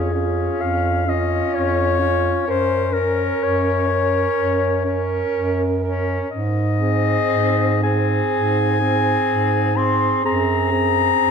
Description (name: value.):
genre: classical, lyrical piece for single-reed quartet.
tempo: 62 BPM.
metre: 4/4.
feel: rubato.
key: unclear.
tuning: A4 = 440 Hz.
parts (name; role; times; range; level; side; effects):
warm clarinet; melody; 0.0-11.3 s; Ab4 to C6; -21 LUFS; left 7 dB; none.
warm alto saxophone; second line; 0.0-11.3 s; F4 to Bb4; -24 LUFS; right 7 dB; none.
warm tenor saxophone; accompaniment; 0.0-11.3 s; C4 to Db4; -25 LUFS; left 3 dB; none.
mellow bass clarinet; bass; 0.0-11.3 s; F2 to Ab2; -22 LUFS; right 2 dB; none.
room: wet recital hall reverb, RT60 1.4 s.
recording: dark, warm production.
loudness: -17 LUFS.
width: side -6 dB against mid.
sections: 0.0-11.3 A section.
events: none.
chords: 0.0 Db/F; 2.5 Gb; 6.3 Ab; 10.3 Ab7/Gb.